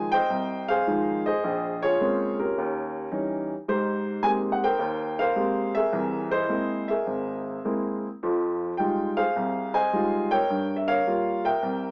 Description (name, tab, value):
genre	solo jazz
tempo	106 BPM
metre	4/4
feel	swing 69% on 8ths, rubato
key	F minor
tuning	A4 = 440 Hz
part	warm upright piano	solo	0.0-11.9 s	G#1 to Ab5	-26 LUFS	equal	none
room	moderate studio reverb, RT60 0.6 s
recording	small speaker sound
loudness	-26 LUFS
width	mono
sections	0.0-11.9 A section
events	none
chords	0.0 Fm9; 1.4 Bbm9; 2.6 Eb7b9; 3.7 Abmaj9; 5.9 C7alt; 8.2 Fm9; 10.5 Gm7b5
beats	0.30 0.87 | 1.44 2.00 2.57 3.13 | 3.69 4.25 4.81 5.37 | 5.94 6.50 7.07 7.64 | 8.22 8.79 9.36 9.93 | 10.50 11.06 11.62